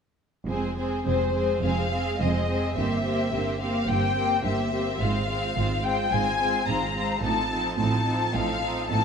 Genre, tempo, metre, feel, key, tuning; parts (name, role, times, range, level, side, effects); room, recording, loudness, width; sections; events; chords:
classical; 107 BPM; 4/4; rubato; F minor; A4 = 438 Hz
warm symphonic violin section; second line; 0.5-9.0 s; Eb4 to C5; -31 LUFS; left 2 dB
rich studio viola section; accompaniment; 0.5-9.0 s; F3 to C4; -30 LUFS; right 2 dB
rich symphonic cello section; bass; 0.5-9.0 s; F2 to A2; -32 LUFS; right 3 dB
rich symphonic double bass section; bass; 0.5-9.0 s; F1 to A1; -30 LUFS; right 3 dB
warm symphonic violin section; melody; 1.1-9.0 s; C5 to Bb5; -27 LUFS; left 5 dB
moderate recital hall reverb, RT60 1.6 s; -23 LUFS; side -6 dB against mid
0.5-9.0 A section
0.5 Fm; 2.8 C7/G; 5.0 Fm/Ab; 7.2 F7/A